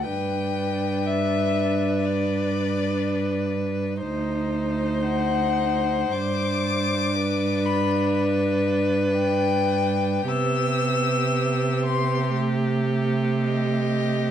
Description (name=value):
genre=classical, slow romantic movement for string quartet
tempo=50-62 BPM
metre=4/4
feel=rubato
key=G major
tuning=A4 = 442 Hz
part: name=clear violin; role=melody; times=0.0-14.3 s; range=D5 to E6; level=-27 LUFS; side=left 8 dB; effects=none
part: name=clear violin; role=second line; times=0.0-14.3 s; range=G4 to C5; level=-28 LUFS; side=left 2 dB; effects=none
part: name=rich viola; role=accompaniment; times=0.0-14.3 s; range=A3 to Eb4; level=-27 LUFS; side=right 1 dB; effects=none
part: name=clear cello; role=bass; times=0.0-14.3 s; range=D2 to C3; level=-26 LUFS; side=right 4 dB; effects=none
room=light reverb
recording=dark, warm production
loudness=-21 LUFS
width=side -9 dB against mid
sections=0.0-14.3 A section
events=none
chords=0.1 G; 4.0 D7b9; 6.1 G; 10.3 Cmaj7; 12.4 Am7b5/C